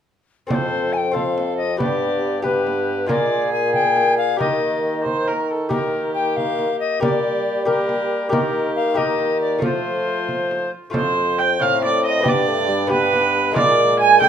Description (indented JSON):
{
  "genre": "classical, renaissance-style consort dance",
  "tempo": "92 BPM (dotted quarters)",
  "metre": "6/8",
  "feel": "straight",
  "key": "F mixolydian",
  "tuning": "A4 = 442 Hz",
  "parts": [
    { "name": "bright alto recorder", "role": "melody", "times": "0.5-14.3 s", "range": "Bb4 to Ab5", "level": "-24 LUFS", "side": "left 5 dB", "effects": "none" },
    { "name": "rich viola", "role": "second line", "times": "0.5-14.3 s", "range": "F4 to Ab5", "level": "-21 LUFS", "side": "right 6 dB", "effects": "none" },
    { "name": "dark bassoon", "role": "accompaniment", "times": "0.5-14.3 s", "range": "G3 to C4", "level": "-26 LUFS", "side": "left 4 dB", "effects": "none" },
    { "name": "lute", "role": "accompaniment", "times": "0.5-14.3 s", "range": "F2 to C5", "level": "-26 LUFS", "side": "left 4 dB", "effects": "none" },
    { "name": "mellow bassoon", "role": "bass", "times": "0.5-14.3 s", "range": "F2 to G3", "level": "-23 LUFS", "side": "right 1 dB", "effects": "none" },
    { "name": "frame drum", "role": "percussion", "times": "0.5-14.3 s", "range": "none", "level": "-28 LUFS", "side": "right 2 dB", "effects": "none" }
  ],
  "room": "light reverb",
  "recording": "minimal, uncompressed stereo recording",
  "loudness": "-17 LUFS",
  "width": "side -8 dB against mid",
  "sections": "0.5-10.9 A section; 10.9-14.3 A section",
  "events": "none",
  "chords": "0.5 F; 1.8 G; 3.1 Bb7; 4.4 Eb; 7.0 Gm; 8.3 Eb; 9.6 F; 12.3 G; 13.6 Bb7"
}